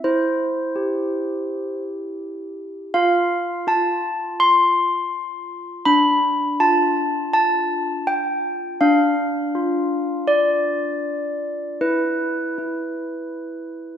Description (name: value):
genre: classical, tune for handbells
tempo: 82 BPM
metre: 4/4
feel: straight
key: unclear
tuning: A4 = 439 Hz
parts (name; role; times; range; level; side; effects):
- handbells; solo; 0.0-14.0 s; D4 to C6; -19 LUFS; equal; none
room: moderate scoring stage reverb, RT60 2.1 s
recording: none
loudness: -18 LUFS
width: side -9 dB against mid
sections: 0.0-14.0 A section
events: none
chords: 0.1 C/E; 2.9 N.C.; 5.9 Dm; 11.8 N.C.